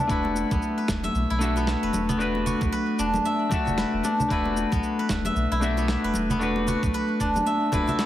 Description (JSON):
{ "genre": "organic downtempo", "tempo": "114 BPM", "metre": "4/4", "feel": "swing 59% on 16ths", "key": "unclear", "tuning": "A4 = 440 Hz", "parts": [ { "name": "clean electric guitar", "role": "accompaniment", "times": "0.0-8.1 s", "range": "A3 to E5", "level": "-26 LUFS", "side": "left 1 dB", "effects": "lush chorus, sidechain pumping, digital delay" }, { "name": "steel-string zither", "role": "arpeggios", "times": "0.0-8.1 s", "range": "B3 to E5", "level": "-27 LUFS", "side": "left 1 dB", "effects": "digital delay" }, { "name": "warm sub bass", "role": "bass", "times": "0.1-7.8 s", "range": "E1 to B1", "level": "-29 LUFS", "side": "right 1 dB", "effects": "none" }, { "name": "electronic kick drum", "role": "drums", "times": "0.1-7.8 s", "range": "none", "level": "-29 LUFS", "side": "right 1 dB", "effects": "none" }, { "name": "electronic shaker, snare drum and congas", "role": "drums", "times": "0.1-8.1 s", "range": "none", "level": "-31 LUFS", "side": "right 2 dB", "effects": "none" }, { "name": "congas and bongos", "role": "percussion", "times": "0.2-8.0 s", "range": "none", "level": "-35 LUFS", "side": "left 1 dB", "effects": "none" } ], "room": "moderate concert hall reverb, RT60 2.0 s, digital ambience", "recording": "heavily compressed radio sound", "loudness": "-22 LUFS", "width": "side -12 dB against mid", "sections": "0.0-8.1 A section", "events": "none", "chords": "0.1 Bm7/E", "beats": "| 0.09 0.62 1.15 1.67 | 2.20 2.73 3.25 3.78 | 4.30 4.83 5.36 5.88 | 6.41 6.93 7.46 7.99" }